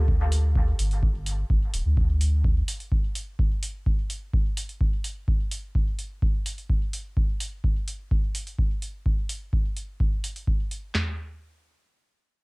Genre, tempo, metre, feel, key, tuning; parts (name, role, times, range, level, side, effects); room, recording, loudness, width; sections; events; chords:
dub techno; 127 BPM; 4/4; straight; A4 = 444 Hz
soft dub sub bass; bass; 0.0-2.6 s; D1 to D2; -23 LUFS; equal; sidechain pumping
booming analog drum machine; drums; 0.1-11.1 s; handclaps, kick drum, snare drum, toms; -24 LUFS; equal
electronic hi-hat; drums; 0.3-10.8 s; -34 LUFS; right 1 dB
digital ambience; dry, gritty hardware recording, cassette tape; -24 LUFS; side -30 dB against mid
0.0-10.9 A section; 10.9-12.4 B section